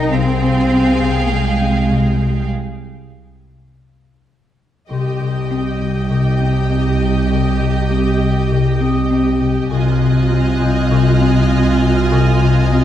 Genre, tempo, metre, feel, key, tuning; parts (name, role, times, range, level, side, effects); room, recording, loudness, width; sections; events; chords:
cinematic, suspense film score; 100 BPM; 4/4; straight; C minor; A4 = 438 Hz
rich studio violin section; melody; 0.0-12.8 s; G5 to Ab5; -29 LUFS; equal
rich studio violin section; second line; 0.0-12.8 s; Ab4 to F5; -26 LUFS; right 1 dB
warm studio cello section; bass; 0.0-12.8 s; C2 to Eb4; -20 LUFS; right 1 dB
warm studio double bass section; bass; 0.0-12.8 s; C2; -18 LUFS; right 3 dB
folk marimba with soft mallets; riff; 0.1-12.8 s; C3 to C4; -17 LUFS; left 5 dB
concert harp; texture; 1.0-12.8 s; Eb5 to G6; -33 LUFS; left 1 dB
rich studio viola section; accompaniment; 4.9-12.8 s; F4 to G4; -23 LUFS; right 2 dB
warm studio violin section; texture; 4.9-12.8 s; Eb6 to G6; -32 LUFS; left 2 dB
wet scoring stage reverb, RT60 1.7 s; dark, warm production; -13 LUFS; side -11 dB against mid
0.0-4.9 A section; 4.9-12.8 B section
break 2.5-4.9
0.1 Fmadd9/C; 4.9 Cm; 9.7 Ab6/C